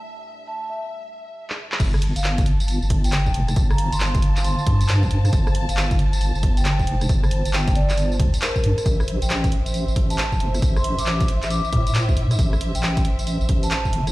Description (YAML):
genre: UK garage, two-step garage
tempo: 136 BPM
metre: 4/4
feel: swing 64% on 16ths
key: unclear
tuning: A4 = 440 Hz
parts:
  - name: warm symphonic violin section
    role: sustained chords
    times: 0.0-14.1 s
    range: E5 to A5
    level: -35 LUFS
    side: left 2 dB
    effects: sidechain pumping
  - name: deep dark ambient pad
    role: texture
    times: 0.0-14.1 s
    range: A3 to F#5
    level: -34 LUFS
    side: right 3 dB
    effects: chorus, built-in reverb, sidechain pumping
  - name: vibraphone with soft mallets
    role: melody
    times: 0.5-13.9 s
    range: Bb4 to D6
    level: -30 LUFS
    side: equal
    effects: tape echo
  - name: punchy analog drum machine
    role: drums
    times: 1.5-14.1 s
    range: crash cymbal, handclaps, hi-hat, rim click, tambourine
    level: -28 LUFS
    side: equal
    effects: low-pass filter on snare, low-pass filter on hats, low-pass filter on cymbals, low-pass filter on perc
  - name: deep soft wobble bass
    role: bass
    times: 1.8-14.1 s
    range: F1 to A2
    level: -21 LUFS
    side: equal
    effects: chorus, sidechain pumping
  - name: electronic kick drum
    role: drums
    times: 1.8-13.9 s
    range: none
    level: -21 LUFS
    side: equal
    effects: none
room: digital ambience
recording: played on a big sound system in a bare room, stone room reverb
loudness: -18 LUFS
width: side -18 dB against mid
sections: 0.0-1.8 A section; 1.8-14.1 B section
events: drum fill 1.5-1.8; drop 1.8-14.1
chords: 0.0 A7(no3); 1.8 G7sus2; 8.9 Am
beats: | 0.03 0.47 0.92 1.36 | 1.80 2.24 2.68 3.12 | 3.56 4.00 4.45 4.89 | 5.33 5.77 6.21 6.65 | 7.09 7.53 7.97 8.42 | 8.86 9.30 9.74 10.18 | 10.62 11.06 11.51 11.95 | 12.39 12.83 13.27 13.71